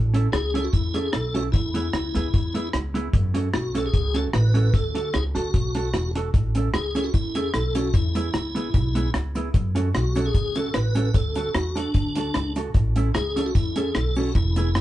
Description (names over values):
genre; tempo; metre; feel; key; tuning
ska; 150 BPM; 4/4; swing 54% on 8ths; A major; A4 = 440 Hz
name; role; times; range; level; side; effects
upright bass; bass; 0.0-14.8 s; E1 to F#2; -25 LUFS; equal; none
mellow electric guitar; accompaniment; 0.1-14.7 s; B3 to A4; -29 LUFS; right 2 dB; spring reverb
deep reggae drum kit; drums; 0.1-14.8 s; hi-hat, kick drum, rim click; -24 LUFS; equal; none
tonewheel organ; melody; 0.3-14.8 s; D4 to B4; -28 LUFS; left 2 dB; chorus vibrato, slow rotary speaker
cabasa; percussion; 6.3-14.8 s; none; -52 LUFS; left 4 dB; none
room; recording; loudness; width
light reverb; band playing live in one room, nothing above 10.4 kHz; -21 LUFS; side -14 dB against mid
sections
0.0-14.8 A section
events
none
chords
0.0 A; 1.5 E; 3.1 F#m; 4.7 D; 6.3 A; 7.9 E; 9.5 F#m; 11.1 D; 12.7 A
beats
0.33 0.73 1.13 | 1.53 1.93 2.33 2.73 | 3.13 3.54 3.94 4.34 | 4.74 5.14 5.54 5.94 | 6.34 6.74 7.14 7.54 | 7.94 8.34 8.74 9.14 | 9.54 9.94 10.34 10.74 | 11.14 11.55 11.95 12.35 | 12.75 13.15 13.55 13.95 | 14.35 14.75